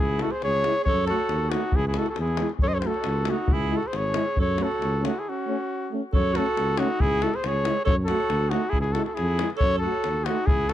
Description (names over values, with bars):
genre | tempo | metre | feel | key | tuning
balkan folk, Balkan brass band | 137 BPM | 2/4 | straight | F# dorian sharp4 | A4 = 439 Hz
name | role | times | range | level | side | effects
clear flugelhorn | melody | 0.0-10.7 s | F#4 to D#5 | -26 LUFS | left 2 dB | tape echo
clear alto saxophone | second line | 0.0-10.7 s | C#4 to B#4 | -32 LUFS | right 12 dB | tape echo
mellow tuba | bass | 0.0-10.7 s | G#1 to F#2 | -28 LUFS | equal | none
clear euphonium | accompaniment | 0.2-10.4 s | G#3 to A3 | -31 LUFS | right 8 dB | none
warm euphonium | accompaniment | 0.2-10.3 s | C#4 to F#4 | -30 LUFS | left 6 dB | none
davul | percussion | 0.2-10.7 s | none | -28 LUFS | left 1 dB | none
room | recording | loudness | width
light reverb | dry, close 1970s-style studio recording | -22 LUFS | side -12 dB against mid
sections
0.0-6.1 A section; 6.1-10.7 A section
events
break 5.3-6.1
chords
0.0 C#m; 0.9 F#m; 1.7 C#m; 2.6 F#m; 3.5 C#m; 4.4 F#m; 7.0 C#m; 7.9 F#m; 8.7 C#m; 9.6 F#m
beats
0.43 | 0.87 1.31 | 1.74 2.18 | 2.62 3.06 | 3.50 3.94 | 4.38 4.81 | 5.25 5.69 | 6.13 6.56 | 7.00 7.44 | 7.87 8.31 | 8.75 9.18 | 9.62 10.05 | 10.49